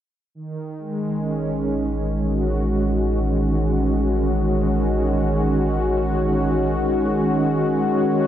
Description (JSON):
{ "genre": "ambient", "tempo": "free time", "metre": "none", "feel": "none", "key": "A lydian", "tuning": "A4 = 440 Hz", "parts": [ { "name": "warm analog pad", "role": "sustained chords", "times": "0.3-8.3 s", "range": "D#3 to F#4", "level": "-20 LUFS", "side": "equal", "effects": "chorus, tremolo" }, { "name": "deep rumbling drone", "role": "bass", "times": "1.4-8.3 s", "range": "A1 to B1", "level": "-25 LUFS", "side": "equal", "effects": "built-in reverb" } ], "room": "wet huge ambient reverb, RT60 8.0 s", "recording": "dark, warm production, nothing above 10.7 kHz", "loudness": "-19 LUFS", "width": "side -11 dB against mid", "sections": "0.4-8.3 A section", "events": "none", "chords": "0.4 Amaj7; 7.7 B" }